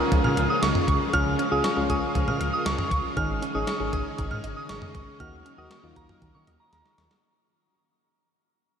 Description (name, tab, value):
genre	synth-pop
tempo	118 BPM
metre	4/4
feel	straight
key	Db major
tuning	A4 = 445 Hz
part	soft electric-piano-like synth keys	accompaniment	0.0-6.5 s	Bb3 to Bb4	-31 LUFS	left 1 dB	chorus
part	string machine, violins	sustained chords	0.0-7.2 s	Db3 to Bb4	-31 LUFS	left 1 dB	ensemble chorus
part	downlifter	sound effects	0.0-3.2 s	none	-38 LUFS	left 1 dB	none
part	wide unison pluck	arpeggios	0.1-7.1 s	Eb3 to Db6	-36 LUFS	right 3 dB	none
part	smooth gliding synth bass	bass	0.1-7.1 s	Ab1 to Eb3	-31 LUFS	left 1 dB	none
part	gated 80s digital drum machine	drums	0.1-7.2 s	hi-hat, kick drum, snare drum, toms	-29 LUFS	equal	gated reverb, gated reverb snare
part	soft synth bell	second line	0.2-7.1 s	Bb5 to F6	-28 LUFS	right 2 dB	chorus, tape echo
room	wet huge ambient reverb, RT60 8.0 s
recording	dreamy mix soaked in reverb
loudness	-23 LUFS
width	side -7 dB against mid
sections	0.0-7.2 A section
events	fade-out 0.0-7.2; drum fill 6.7-7.2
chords	0.0 Db; 3.2 Absus4; 5.2 Ebm7